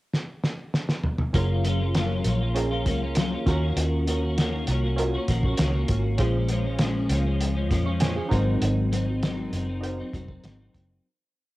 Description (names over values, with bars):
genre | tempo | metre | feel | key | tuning
indie pop, bedroom pop | 99 BPM | 4/4 | straight | unclear | A4 = 436 Hz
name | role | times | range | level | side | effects
cloth-damped thuddy drum kit | drums | 0.1-10.9 s | hi-hat, kick drum, snare drum, toms | -27 LUFS | equal | cassette tape
twelve-string electric guitar | accompaniment | 1.3-11.1 s | Ab2 to Gb4 | -28 LUFS | left 2 dB | ensemble chorus, warbly pitch drift
warm analog keys | accompaniment | 1.3-11.1 s | Db4 to Db6 | -32 LUFS | right 3 dB | chorus
vintage muted fingered electric bass | bass | 1.3-11.0 s | F1 to F2 | -26 LUFS | equal | none
room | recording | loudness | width
studio reverb | home recording on cassette | -22 LUFS | side -18 dB against mid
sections
0.0-1.3 pickup bar; 1.3-11.0 verse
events
drum fill 0.1-1.3; fade-out 8.6-11.0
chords
0.0 N.C.; 1.3 Gbmaj7; 3.5 Ebm7; 6.2 Bbm7; 8.3 Ab7